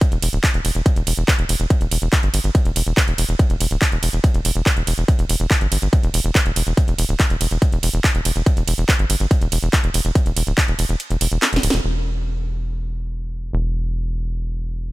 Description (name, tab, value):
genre	psychedelic trance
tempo	142 BPM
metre	4/4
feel	straight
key	E minor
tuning	A4 = 440 Hz
part	electronic kick drum	drums	0.0-10.7 s	none	-17 LUFS	equal	distortion
part	techno drum kit	drums	0.0-11.8 s	handclaps, hi-hat, ride cymbal, snare drum	-22 LUFS	right 2 dB	none
part	tight sequencer bass	bass	0.1-14.9 s	D1 to G1	-20 LUFS	equal	none
room	digital ambience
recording	none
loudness	-17 LUFS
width	side -20 dB against mid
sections	0.0-11.8 A section; 11.8-14.9 B section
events	drop 0.0-11.8; kick drops out 11.0-11.8; drum fill 11.4-11.8; band accent 11.7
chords	none